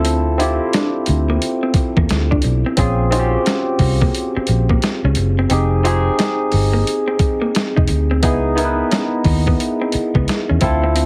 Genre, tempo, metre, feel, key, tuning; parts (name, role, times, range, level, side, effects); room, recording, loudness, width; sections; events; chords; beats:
R&B, neo-soul; 88 BPM; 4/4; swing 64% on 16ths; A4 = 439 Hz
barky tine electric piano; accompaniment; 0.0-11.1 s; Cb4 to Cb5; -21 LUFS; equal; overdrive, lush chorus
vintage muted fingered electric bass; bass; 0.0-11.1 s; F1 to E2; -20 LUFS; equal
boom bap sampler-style drum kit; drums; 0.0-11.1 s; hi-hat, kick drum, snare drum; -21 LUFS; equal
electric guitar through a small old amp; second line; 0.1-11.1 s; Bb3 to F4; -28 LUFS; equal; spring reverb
light reverb; heavily compressed radio sound, multiband compression; -17 LUFS; mono
0.0-11.1 A section
0.0 Dm9; 2.8 Bbm9; 5.5 Fm9; 8.2 Dbm9
| 0.05 0.73 1.41 2.09 | 2.78 3.46 4.14 4.82 | 5.50 6.18 6.87 7.55 | 8.23 8.91 9.59 10.28 | 10.96